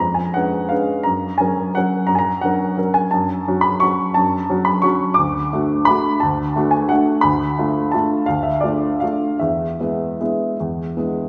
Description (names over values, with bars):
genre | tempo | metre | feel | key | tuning
classical, piano waltz | 148-186 BPM | 3/4 | rubato | F# major | A4 = 441 Hz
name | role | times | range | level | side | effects
warm baby grand piano | solo | 0.0-11.3 s | D2 to D6 | -19 LUFS | equal | none
room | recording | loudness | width
wet scoring stage reverb, RT60 1.8 s | heard from further back in the room | -19 LUFS | mono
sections
0.0-11.3 A section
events
none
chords
0.0 C#7/E#; 1.1 F#; 3.1 F#m; 5.2 D; 7.2 Dm; 9.4 E